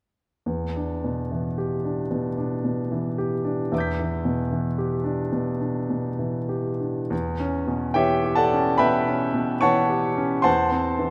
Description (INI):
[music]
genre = classical, impressionist solo piano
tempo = 72 BPM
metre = 4/4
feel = uneven beats, rubato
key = E minor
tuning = A4 = 441 Hz
[part]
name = bright grand piano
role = solo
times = 0.5-11.1 s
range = E2 to B6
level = -24 LUFS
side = equal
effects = none
[sound]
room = moderate scoring stage reverb, RT60 1.6 s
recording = none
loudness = -24 LUFS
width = mono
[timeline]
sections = 0.5-7.1 A section; 7.1-11.1 B section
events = none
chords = 0.5 Em7; 7.1 Em6; 10.5 C6/E